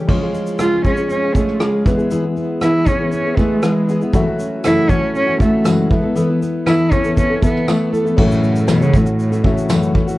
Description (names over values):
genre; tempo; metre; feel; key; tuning
acoustic pop; 119 BPM; 4/4; straight; unclear; A4 = 440 Hz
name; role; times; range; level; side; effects
picked steel-string acoustic guitar; accompaniment; 0.0-10.2 s; F#2 to A4; -19 LUFS; left 2 dB; none
warm upright piano; accompaniment; 0.0-10.2 s; C#3 to E5; -26 LUFS; left 2 dB; none
fingerpicked plugged-in steel-string acoustic guitar; arpeggios; 0.0-8.7 s; E#3 to A4; -24 LUFS; right 4 dB; none
soft brush drum kit; drums; 0.1-10.2 s; crash cymbal, kick drum, rim click, shaker, snare drum; -18 LUFS; equal; none
warm cello; melody; 0.6-9.7 s; A2 to E#4; -18 LUFS; right 1 dB; none
tambourine; percussion; 4.6-9.8 s; none; -35 LUFS; right 7 dB; none
room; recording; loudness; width
light reverb; worn, warbling old tape, cassette tape, warbly pitch drift; -14 LUFS; side -17 dB against mid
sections
0.1-8.2 A section; 8.2-10.2 B section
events
none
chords
0.1 C#; 1.9 E; 4.1 F#m7; 5.9 Esus4; 8.2 F#m7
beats
| 0.09 0.59 1.10 1.61 | 2.11 2.62 3.12 3.63 | 4.14 4.64 5.15 5.65 | 6.16 6.66 7.17 7.67 | 8.18 8.69 9.19 9.70